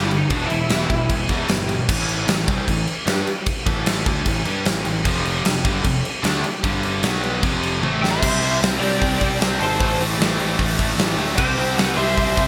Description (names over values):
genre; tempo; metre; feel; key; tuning
hard rock; 152 BPM; 4/4; straight; A minor; A4 = 436 Hz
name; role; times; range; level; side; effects
lead guitar through a small cranked amp; melody; 0.0-1.2, 8.0-12.5 s; D4 to G5; -28 LUFS; equal; overdrive, ensemble chorus, digital delay
cranked stack guitar; riff; 0.0-1.9, 5.0-12.5 s; E2 to D4; -28 LUFS; equal; overdrive, spring reverb
scooped high-gain guitar; riff; 0.0-12.5 s; E2 to G4; -29 LUFS; equal; distortion
fuzz picked electric bass; bass; 0.0-12.5 s; E1 to G2; -28 LUFS; equal; overdrive
big rock drum kit; drums; 0.1-12.5 s; crash cymbal, hi-hat, kick drum, snare drum, toms; -24 LUFS; equal; gated reverb
octave-fuzz lead guitar; second line; 8.0-12.4 s; G4 to E5; -29 LUFS; equal; distortion
room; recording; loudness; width
moderate plate reverb, RT60 1.6 s; bright 1980s-style digital production; -20 LUFS; mono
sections
0.0-1.9 A section; 1.9-8.2 B section; 8.2-12.5 C section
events
lead electric guitar solo 0.0-1.9; drum fill 7.8-8.2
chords
0.3 Em; 1.9 Am; 5.0 F5; 6.6 G5; 7.0 B5; 7.4 F5; 7.8 A5; 8.2 C; 9.8 A5; 11.4 C